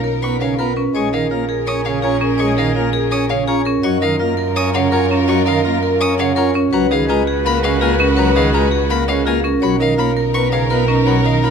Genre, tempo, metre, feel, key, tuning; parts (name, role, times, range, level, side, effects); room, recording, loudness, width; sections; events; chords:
classical, minimalist pattern music; 166 BPM; 4/4; straight; Db mixolydian; A4 = 440 Hz
vibraphone with hard mallets; melody; 0.0-11.5 s; Ab4 to Gb5; -23 LUFS; left 8 dB
clear soprano saxophone; second line; 0.0-11.5 s; Ab4 to Cb5; -26 LUFS; equal
rich studio string section; sustained chords; 0.0-11.5 s; Db4 to Cb5; -26 LUFS; left 1 dB
marimba with hard mallets; arpeggios; 0.0-11.5 s; Db4 to Db5; -19 LUFS; right 4 dB
warm double bass; bass; 0.0-11.5 s; Bb1 to Gb2; -21 LUFS; right 2 dB
pipe organ, plenum; accompaniment; 0.2-11.5 s; Db3 to Db4; -21 LUFS; left 1 dB
rich violin; arpeggios; 0.2-11.5 s; F5 to Eb6; -24 LUFS; left 5 dB
moderate recital hall reverb, RT60 1.3 s; close, detailed microphones; -14 LUFS; side -6 dB against mid
0.0-11.5 A section
0.0 Cbmaj9; 0.9 Bbm7; 3.8 Gbmaj7; 6.7 Db13sus4; 9.6 Cbmaj9